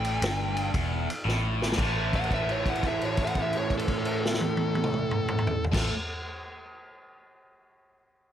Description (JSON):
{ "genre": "blues rock power trio and southern rock", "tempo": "115 BPM", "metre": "4/4", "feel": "swing 66% on 8ths", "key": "unclear", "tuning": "A4 = 441 Hz", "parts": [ { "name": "fuzz lead guitar", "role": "melody", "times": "0.0-5.9 s", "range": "A4 to G5", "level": "-32 LUFS", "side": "equal", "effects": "distortion" }, { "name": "cranked stack guitar", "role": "riff", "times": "0.0-5.9 s", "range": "E2 to A3", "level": "-30 LUFS", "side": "right 1 dB", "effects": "overdrive, phaser" }, { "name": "vintage muted fingered electric bass", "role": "bass", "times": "0.0-5.9 s", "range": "E1 to A1", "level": "-31 LUFS", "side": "equal", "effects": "none" }, { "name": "vintage drum kit", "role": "drums", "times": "0.0-5.9 s", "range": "crash cymbal, kick drum, ride cymbal, snare drum, toms", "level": "-30 LUFS", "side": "equal", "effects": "none" } ], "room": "small room ambience", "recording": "none", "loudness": "-25 LUFS", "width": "side -10 dB against mid", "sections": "0.0-1.8 A section; 1.8-6.0 B section", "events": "drum fill 1.3-1.8; held note 1.8-5.7", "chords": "0.0 Gsus2; 0.7 Esus4; 1.8 A5" }